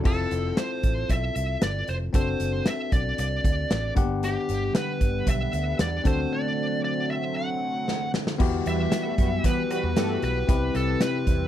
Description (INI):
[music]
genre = 1980s-style pop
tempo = 115 BPM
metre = 4/4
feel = straight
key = unclear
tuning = A4 = 440 Hz
[part]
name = bell-like tine electric piano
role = accompaniment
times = 0.0-11.5 s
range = Bb3 to F#5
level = -30 LUFS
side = left 7 dB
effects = none
[part]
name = vintage muted fingered electric bass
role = bass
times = 0.0-11.5 s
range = F1 to E3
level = -29 LUFS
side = right 1 dB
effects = none
[part]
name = smooth overdriven lead guitar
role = melody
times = 0.1-11.5 s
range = G4 to F#5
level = -30 LUFS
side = right 1 dB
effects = slapback echo
[part]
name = modern studio drum kit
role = drums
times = 0.1-11.4 s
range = crash cymbal, hi-hat, kick drum, snare drum, tambourine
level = -26 LUFS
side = equal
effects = none
[part]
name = sweeping resonant pad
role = sustained chords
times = 4.2-11.5 s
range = C3 to F#5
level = -32 LUFS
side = right 3 dB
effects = chorus
[part]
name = analog synth brass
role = stabs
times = 8.7-10.2 s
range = E3 to B4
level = -33 LUFS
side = right 5 dB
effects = chorus, tremolo
[sound]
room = little or no reverb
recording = none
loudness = -23 LUFS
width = side -11 dB against mid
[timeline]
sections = 0.1-8.4 A section; 8.4-11.5 B section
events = break 6.3-8.4; drum fill 7.9-8.4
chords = 0.1 Fmaj7; 2.1 D7/F#; 4.0 Gmaj7; 6.1 D7; 8.4 Emadd9; 10.5 Cmaj7